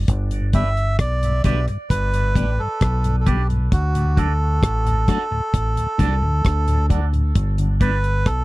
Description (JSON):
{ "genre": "roots reggae", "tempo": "66 BPM", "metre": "4/4", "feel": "straight", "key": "G major", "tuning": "A4 = 441 Hz", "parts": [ { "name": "deep dub fingered electric bass", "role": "bass", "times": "0.0-8.4 s", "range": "G1 to D2", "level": "-20 LUFS", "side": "equal", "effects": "none" }, { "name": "deep reggae drum kit", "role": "drums", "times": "0.1-8.4 s", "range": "hi-hat, kick drum, rim click", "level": "-19 LUFS", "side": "equal", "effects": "none" }, { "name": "mellow tonewheel organ", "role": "accompaniment", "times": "0.3-7.9 s", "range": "D2 to D4", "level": "-24 LUFS", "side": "left 2 dB", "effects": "chorus vibrato" }, { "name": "melodica", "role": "melody", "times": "0.5-8.4 s", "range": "F#4 to E5", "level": "-25 LUFS", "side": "right 2 dB", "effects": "dub echo" }, { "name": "clean electric guitar", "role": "accompaniment", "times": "0.5-8.0 s", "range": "D4 to D5", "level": "-33 LUFS", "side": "right 7 dB", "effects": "phaser, dub echo" } ], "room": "little or no reverb", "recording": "dry, close 1970s-style studio recording", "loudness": "-17 LUFS", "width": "side -20 dB against mid", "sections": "0.0-8.4 A section", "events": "none", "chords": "0.1 G; 3.7 D; 7.4 G" }